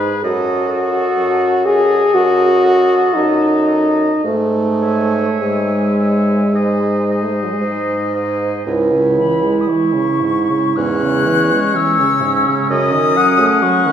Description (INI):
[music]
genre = classical, slow romantic movement for wind quintet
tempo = 52-65 BPM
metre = 4/4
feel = rubato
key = C# minor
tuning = A4 = 436 Hz
[part]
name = concert flute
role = melody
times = 0.0-13.9 s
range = G#5 to F#6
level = -21 LUFS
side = left 5 dB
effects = none
[part]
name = clear oboe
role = second line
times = 0.0-13.9 s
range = B4 to F#5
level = -22 LUFS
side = left 3 dB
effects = none
[part]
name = warm clarinet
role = accompaniment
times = 0.0-13.9 s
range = C#4 to C#5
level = -21 LUFS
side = right 6 dB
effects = none
[part]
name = clear bassoon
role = bass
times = 0.0-13.5 s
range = C#2 to G#2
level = -19 LUFS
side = right 2 dB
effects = none
[part]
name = clear French horn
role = accompaniment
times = 0.3-13.9 s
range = G#2 to G#4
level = -16 LUFS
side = left 1 dB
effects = none
[sound]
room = wet recital hall reverb, RT60 1.7 s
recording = heard from further back in the room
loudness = -13 LUFS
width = side -9 dB against mid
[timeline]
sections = 0.0-8.7 A section; 8.7-13.9 B section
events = none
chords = 0.2 D#dim/F#; 4.3 C#m/G#; 6.5 G#; 8.7 C#m; 10.8 C#m/E; 12.7 D#m7b5/F#